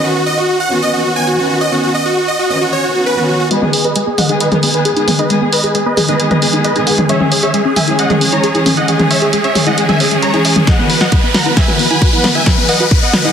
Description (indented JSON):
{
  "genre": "uplifting trance",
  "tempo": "134 BPM",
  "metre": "4/4",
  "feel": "straight",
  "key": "G# minor",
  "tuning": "A4 = 435 Hz",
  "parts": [
    { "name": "supersaw chords", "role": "melody", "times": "0.0-13.3 s", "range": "F#4 to B5", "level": "-14 LUFS", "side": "right 1 dB", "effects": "sidechain pumping, low-pass filter, tape echo" },
    { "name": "dark chamber string section", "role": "sustained chords", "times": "0.0-13.3 s", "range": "D#3 to G#4", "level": "-18 LUFS", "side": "equal", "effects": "sidechain pumping" },
    { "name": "tight sequenced synth", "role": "arpeggios", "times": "3.5-13.3 s", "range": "F#3 to E5", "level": "-20 LUFS", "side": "left 2 dB", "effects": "chorus, cassette tape, sidechain pumping, tape echo" },
    { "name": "punchy analog drum machine", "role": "drums", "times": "3.5-13.3 s", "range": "hi-hat, snare drum, toms", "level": "-15 LUFS", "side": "left 1 dB", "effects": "none" },
    { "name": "riser", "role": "sound effects", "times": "6.0-13.3 s", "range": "none", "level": "-21 LUFS", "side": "left 1 dB", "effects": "none" },
    { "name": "electronic kick drum", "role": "drums", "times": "10.7-13.0 s", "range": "none", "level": "-12 LUFS", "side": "equal", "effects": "none" }
  ],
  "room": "light reverb",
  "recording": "dense, heavily limited modern master",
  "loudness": "-10 LUFS",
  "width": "side -8 dB against mid",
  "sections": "0.0-3.5 A section; 3.5-13.3 B section",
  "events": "build-up 3.5-13.3; filter sweep on supersaw synth 3.5-13.3; filter sweep on synth arpeggio sound 3.5-13.3; riser 6.0-13.3; drum fill 10.7-13.3",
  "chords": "0.0 Badd9; 3.5 G#m; 7.1 C#m; 10.7 Esus2",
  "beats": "0.38 0.82 1.27 | 1.72 2.17 2.61 3.06 | 3.51 3.96 4.41 4.85 | 5.30 5.75 6.20 6.64 | 7.09 7.54 7.99 8.44 | 8.88 9.33 9.78 10.23 | 10.67 11.12 11.57 12.02 | 12.46 12.91"
}